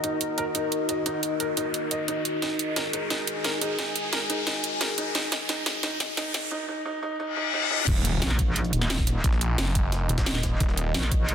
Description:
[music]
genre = dark technical drum and bass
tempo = 176 BPM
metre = 4/4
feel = straight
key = Eb minor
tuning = A4 = 440 Hz
[part]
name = dark analog pad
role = sustained chords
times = 0.0-11.3 s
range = Eb4 to Eb5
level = -34 LUFS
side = equal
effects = chorus, sidechain pumping
[part]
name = felt-muted upright piano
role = arpeggios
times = 0.0-7.8 s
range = Eb4 to Eb5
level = -32 LUFS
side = right 2 dB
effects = sidechain pumping, low-pass filter, ping-pong delay
[part]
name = drum and bass drum kit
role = drums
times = 0.0-11.3 s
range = crash cymbal, hi-hat, snare drum, toms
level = -29 LUFS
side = right 1 dB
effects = overdrive, high-pass filter on hats, high-pass filter on snare, high-pass filter on toms, high-pass filter on cymbals
[part]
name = riser, reverse cymbal and impact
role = sound effects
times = 0.0-9.2 s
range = none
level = -32 LUFS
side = left 2 dB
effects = none
[part]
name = warbly tape-like pad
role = texture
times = 0.0-6.5 s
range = Gb4 to Bb5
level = -33 LUFS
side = left 4 dB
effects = chorus, built-in reverb, phaser, sidechain pumping
[part]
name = snarling distorted saw bass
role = bass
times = 7.9-10.9 s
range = Eb1 to Bb1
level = -26 LUFS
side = equal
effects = distortion, overdrive, sidechain pumping
[part]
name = electronic kick drum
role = drums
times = 7.9-11.2 s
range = none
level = -25 LUFS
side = equal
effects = overdrive
[part]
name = jungle sampler-style drum kit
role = drums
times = 7.9-11.3 s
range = hi-hat, snare drum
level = -38 LUFS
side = equal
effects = none
[part]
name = metallic wobble bass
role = bass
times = 8.2-11.3 s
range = Eb1 to Bb1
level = -26 LUFS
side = equal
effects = chorus
[sound]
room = light reverb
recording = dense, heavily limited modern master, high-pass filter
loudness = -24 LUFS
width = side -8 dB against mid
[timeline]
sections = 0.0-7.9 A section; 7.9-11.3 B section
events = build-up 0.0-7.9; riser 0.0-6.5; filter sweep 0.0-7.9; drum fill 2.4-6.5, 7.6; reverse cymbal 7.3-7.9; drop 7.9-11.3; impact 7.9-9.2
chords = 0.0 Ebm

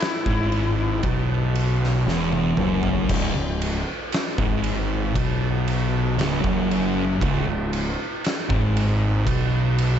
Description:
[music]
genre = stoner and doom metal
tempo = 58 BPM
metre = 4/4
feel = straight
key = C# minor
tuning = A4 = 443 Hz
[part]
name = fuzz lead guitar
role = melody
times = 0.0-1.0 s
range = E4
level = -28 LUFS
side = left 3 dB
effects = wah, distortion, tape echo
[part]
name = oversized low-tuned drum kit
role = drums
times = 0.0-10.0 s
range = crash cymbal, kick drum, ride cymbal, snare drum, toms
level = -26 LUFS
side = equal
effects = none
[part]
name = thick fuzz guitar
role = riff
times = 0.3-10.0 s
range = C#2 to B2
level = -25 LUFS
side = left 6 dB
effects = distortion
[part]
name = thick fuzz guitar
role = riff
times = 0.3-10.0 s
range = C#2 to B2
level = -25 LUFS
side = right 7 dB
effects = distortion
[part]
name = fuzz fingered electric bass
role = bass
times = 0.3-10.0 s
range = C#1 to B1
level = -27 LUFS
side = equal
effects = overdrive
[sound]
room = light reverb, studio reverb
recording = nothing above 7.9 kHz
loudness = -20 LUFS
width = side -9 dB against mid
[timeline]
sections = 0.0-3.1 A section; 3.1-10.0 B section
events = lead electric guitar solo 0.0-3.1; drum fill 2.1-3.1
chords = 0.0 C#m (rootless); 3.1 C#5

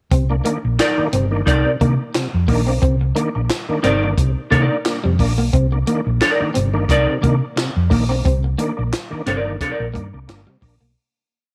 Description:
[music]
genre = funk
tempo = 88 BPM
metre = 4/4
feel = swing 56% on 16ths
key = C minor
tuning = A4 = 440 Hz
[part]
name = electric guitar at the edge of break-up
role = riff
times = 0.1-10.9 s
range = G3 to C4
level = -26 LUFS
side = equal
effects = none
[part]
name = overdriven tonewheel organ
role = stabs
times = 0.1-10.8 s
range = C3 to D4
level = -26 LUFS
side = equal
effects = chorus vibrato, fast rotary speaker, slapback echo
[part]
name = hollow-body short-scale fingered electric bass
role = bass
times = 0.1-10.9 s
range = G1 to C3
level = -21 LUFS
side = equal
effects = none
[part]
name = compact cocktail drum kit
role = drums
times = 0.1-10.8 s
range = handclaps, hi-hat, kick drum, snare drum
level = -24 LUFS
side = equal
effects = none
[part]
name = semi-hollow electric guitar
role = accompaniment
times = 0.8-9.8 s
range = Eb4 to D5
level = -22 LUFS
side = equal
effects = ensemble chorus
[sound]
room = studio ambience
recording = none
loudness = -18 LUFS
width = mono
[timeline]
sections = 0.1-11.0 groove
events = fade-out 8.3-11.0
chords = 0.1 Cm9

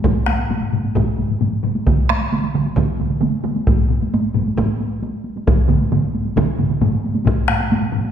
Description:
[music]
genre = japanese traditional, taiko drum ensemble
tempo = 133 BPM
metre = 4/4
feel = straight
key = none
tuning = none
[part]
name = taiko ensemble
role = percussion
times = 0.0-8.0 s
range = none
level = -21 LUFS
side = left 3 dB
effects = none
[part]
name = taiko ensemble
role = percussion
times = 0.0-7.4 s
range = none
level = -20 LUFS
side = equal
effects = none
[part]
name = taiko ensemble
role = percussion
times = 0.1-8.1 s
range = none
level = -22 LUFS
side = right 1 dB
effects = none
[part]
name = taiko ensemble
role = percussion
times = 1.9-6.9 s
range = none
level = -21 LUFS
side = right 5 dB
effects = none
[sound]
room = wet scoring stage reverb, RT60 1.7 s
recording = recorded in a church or concert hall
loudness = -16 LUFS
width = side -9 dB against mid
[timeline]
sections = 0.0-8.1 A section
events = none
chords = none

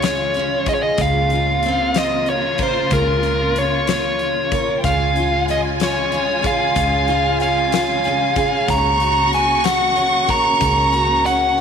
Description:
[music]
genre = six-eight pop ballad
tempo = 62 BPM (dotted quarters)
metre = 6/8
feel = straight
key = Db major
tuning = A4 = 440 Hz
[part]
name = dark smooth lead guitar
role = melody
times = 0.0-11.6 s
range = Bb4 to Bb5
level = -18 LUFS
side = right 1 dB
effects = overdrive
[part]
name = picked steel-string acoustic guitar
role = accompaniment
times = 0.0-11.6 s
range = Db3 to Bb4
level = -23 LUFS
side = equal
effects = double-tracked left and right
[part]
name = warm studio string section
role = sustained chords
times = 0.0-11.6 s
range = Db3 to Gb4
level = -26 LUFS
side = left 1 dB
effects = none
[part]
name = vintage muted fingered electric bass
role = bass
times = 0.0-11.6 s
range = Db2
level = -24 LUFS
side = equal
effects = none
[part]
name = huge arena drum kit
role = drums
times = 0.0-11.4 s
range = hi-hat, kick drum, snare drum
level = -27 LUFS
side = left 4 dB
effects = none
[part]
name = bright studio violin section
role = second line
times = 4.8-11.6 s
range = G5 to Db6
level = -23 LUFS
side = equal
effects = none
[sound]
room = moderate echo chamber reverb, RT60 2.1 s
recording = 1960s-style stereo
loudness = -15 LUFS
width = side -7 dB against mid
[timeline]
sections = 0.0-11.6 A section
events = none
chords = 0.0 Db; 1.0 Bbmadd9/Db; 4.8 Db; 8.7 Gb/Db

